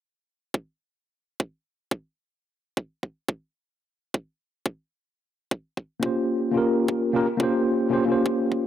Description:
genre	liquid drum and bass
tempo	175 BPM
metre	4/4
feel	straight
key	unclear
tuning	A4 = 441 Hz
part	electronic kick drum	drums	0.5-8.6 s	none	-27 LUFS	equal	high-pass filter on kick
part	tine electric piano	accompaniment	6.0-8.7 s	Bb3 to C5	-21 LUFS	equal	overdrive, fast stereo tremolo, tape echo
room	moderate lush hall reverb, RT60 1.8 s, digital ambience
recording	none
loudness	-24 LUFS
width	side -10 dB against mid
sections	0.5-8.7 A section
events	none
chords	0.5 N.C.; 6.0 Eb13 (rootless)

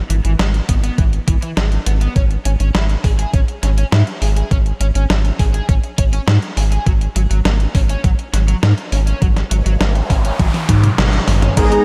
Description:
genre	synthwave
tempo	102 BPM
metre	4/4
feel	straight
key	unclear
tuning	A4 = 439 Hz
part	round analog bass	bass	0.0-11.8 s	G#1 to G#2	-17 LUFS	equal	none
part	overdriven semi-hollow guitar	riff	0.1-11.6 s	E3 to G#4	-29 LUFS	equal	analog chorus, low-pass filter, diffuse ambient delay
part	detuned 8-bit digital drum machine	drums	0.1-11.8 s	crash cymbal, hi-hat, snare drum, toms	-24 LUFS	equal	none
part	electronic kick drum	drums	0.7-11.7 s	none	-19 LUFS	equal	none
part	noise sweep	sound effects	9.4-11.6 s	none	-28 LUFS	equal	none
part	mellow synth brass	melody	11.6-11.8 s	G#4	-16 LUFS	equal	chorus
part	brassy analog pad	sustained chords	11.6-11.8 s	G#3 to A#5	-19 LUFS	equal	chorus, tremolo, sidechain pumping
part	warm electric grand piano	stabs	11.6-11.8 s	G#2 to A#4	-24 LUFS	equal	analog chorus
room	light reverb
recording	none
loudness	-16 LUFS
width	mono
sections	0.0-11.6 A section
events	noise sweep 9.4-11.6; drum fill 10.4-11.6; band accent 11.0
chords	0.0 E/G#; 2.2 C#5/G#; 6.9 F#5/G#

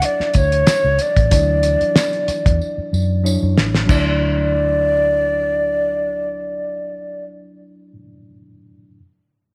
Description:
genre	lush 1970s-style soul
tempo	93 BPM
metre	4/4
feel	swing 54% on 16ths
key	D major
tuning	A4 = 438 Hz
part	breathy mellow shakuhachi	melody	0.0-7.2 s	C#5 to D5	-21 LUFS	equal	none
part	tine electric piano	accompaniment	0.0-9.0 s	E3 to E5	-29 LUFS	equal	overdrive
part	cloth-damped thuddy drum kit	drums	0.0-4.1 s	crash cymbal, hi-hat, kick drum, snare drum	-20 LUFS	equal	none
part	vintage muted fingered electric bass	bass	0.2-7.9 s	A1 to F#2	-22 LUFS	equal	none
part	tambourine	percussion	0.4-4.2 s	none	-35 LUFS	equal	none
room	light reverb, small room ambience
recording	none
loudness	-17 LUFS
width	mono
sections	0.0-3.9 A section; 3.9-6.5 B section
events	drum fill 2.6-3.9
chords	0.0 Dmaj9; 3.9 Dadd9

